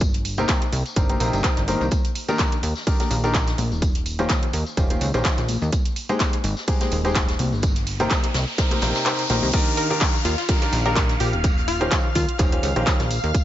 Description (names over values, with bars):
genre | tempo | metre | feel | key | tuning
piano house | 126 BPM | 4/4 | swing 55% on 16ths | Eb major | A4 = 439 Hz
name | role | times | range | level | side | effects
plucky analog bass | bass | 0.0-13.3 s | Eb1 to Eb2 | -24 LUFS | equal | sidechain pumping
electronic kick drum | drums | 0.0-13.4 s | none | -22 LUFS | equal | overdrive
house drum kit | drums | 0.0-13.4 s | crash cymbal, handclaps, hi-hat | -28 LUFS | right 1 dB | overdrive
vintage brush drum kit | drums | 0.0-13.4 s | hi-hat, snare drum, tambourine | -34 LUFS | left 2 dB | high-pass filter on hats, high-pass filter on snare, high-pass filter on perc, high-pass filter on room
tambourine and congas | percussion | 0.0-9.5 s | none | -32 LUFS | left 5 dB | none
clear baby grand piano | riff | 0.4-13.0 s | C3 to C5 | -26 LUFS | equal | sidechain pumping, low-pass filter, ping-pong delay
riser and downlifter | sound effects | 7.0-13.3 s | none | -30 LUFS | left 1 dB | none
string machine, violins | sustained chords | 9.5-13.4 s | F5 to F6 | -31 LUFS | equal | ensemble chorus, sidechain pumping
glassy wavetable pluck | melody | 9.8-12.8 s | F4 to Bb4 | -28 LUFS | left 1 dB | chorus, ping-pong delay
room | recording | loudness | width
studio reverb | nothing above 7.6 kHz | -19 LUFS | side -12 dB against mid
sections
0.0-9.5 A section; 9.5-13.4 B section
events
riser 7.0-9.5; kick drops out 9.1-9.5; drop 9.5-13.4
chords
0.0 Cm7; 1.9 Ebmaj7; 3.8 Eb13; 5.7 Abmaj7; 7.4 Cm7; 9.5 Ebmaj7; 11.4 Eb13